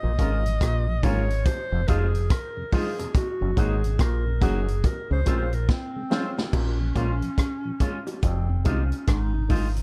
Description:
roots reggae; 71 BPM; 4/4; swing 63% on 16ths; Bb minor; A4 = 441 Hz
warm clarinet; melody; 0.0-9.7 s; C4 to Eb5; -34 LUFS; equal; tape echo
mellow tonewheel organ; accompaniment; 0.0-9.8 s; F2 to Ab4; -38 LUFS; equal
overdriven clav; riff; 0.0-9.3 s; F2 to Db3; -35 LUFS; equal; auto-wah
deep dub fingered electric bass; bass; 0.0-9.8 s; F1 to Db2; -27 LUFS; equal
electric guitar with an envelope filter; accompaniment; 0.2-9.7 s; Ab3 to Gb4; -38 LUFS; equal; spring reverb, tape echo
warm baby grand piano; stabs; 0.2-6.4 s; Db4 to Db5; -38 LUFS; equal
vintage drum kit; drums; 0.2-9.8 s; crash cymbal, hi-hat, kick drum, rim click, snare drum; -26 LUFS; equal
bongos; percussion; 1.0-9.7 s; -39 LUFS; equal
little or no reverb; dark, warm production; -25 LUFS; mono
0.0-6.5 A section; 6.5-9.8 B section
clarinet solo 0.0-6.5; drum fill 5.7-6.5
0.0 Bbm7; 1.5 Fm7; 3.1 Gb6; 4.8 Dbmaj7; 6.5 Bbm7; 8.2 Fm7

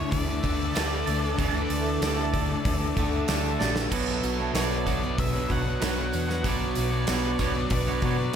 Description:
rock, shoegaze and dream pop; 95 BPM; 4/4; straight; A4 = 440 Hz
octave-fuzz lead guitar; melody; 0.0-8.4 s; C#5 to F#5; -35 LUFS; left 3 dB; distortion, analog delay
shimmering ambient pad; sustained chords; 0.0-8.4 s; A4 to C#6; -35 LUFS; right 1 dB; chorus, built-in reverb, phaser
picked twelve-string acoustic guitar; arpeggios; 0.0-8.4 s; E3 to D4; -37 LUFS; equal; wide subtle chorus, analog delay
biting overdriven guitar; riff; 0.0-8.4 s; B2 to D4; -33 LUFS; equal
thick fuzz guitar; riff; 0.0-8.4 s; B2 to D4; -33 LUFS; left 9 dB; distortion, wide subtle chorus
twangy electric guitar; riff; 0.0-8.2 s; B2 to D5; -32 LUFS; right 10 dB; reverse reverb
hollow-body short-scale fingered electric bass; bass; 0.0-8.3 s; Bb1 to B2; -30 LUFS; equal
gated 80s drum kit; drums; 0.1-8.4 s; crash cymbal, hi-hat, kick drum, snare drum; -30 LUFS; equal
tambourine; percussion; 0.8-8.1 s; -43 LUFS; right 9 dB
light reverb, small room ambience; -24 LUFS; side -8 dB against mid
0.0-3.9 A section; 3.9-8.4 B section
drum fill 3.6-3.9
0.0 Dsus2; 3.9 Bmadd9

